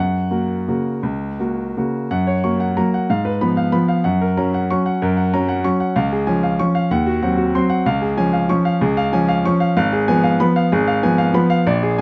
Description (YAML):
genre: classical, piano waltz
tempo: 159-196 BPM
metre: 3/4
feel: rubato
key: F# major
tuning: A4 = 440 Hz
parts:
  - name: clear grand piano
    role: solo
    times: 0.0-12.0 s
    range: Ab1 to C#6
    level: -18 LUFS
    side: equal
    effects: none
room: light reverb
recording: close, detailed microphones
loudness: -18 LUFS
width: mono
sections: 0.0-2.1 A section; 2.1-12.0 B section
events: none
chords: 0.0 F#; 3.1 Fdim/Ab; 4.0 F#; 6.0 C#; 6.9 Cdim/Eb; 7.9 C#; 9.8 Fdim/Ab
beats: 0.30 0.68 | 1.04 1.40 1.76 | 2.11 2.44 2.77 | 3.09 3.41 3.73 | 4.05 4.37 4.70 | 5.01 5.32 5.64 | 5.96 6.27 6.59 | 6.90 7.22 7.54 | 7.85 8.17 8.50 | 8.82 9.13 9.45 | 9.76 10.08 10.40 | 10.72 11.03 11.35 | 11.66 11.98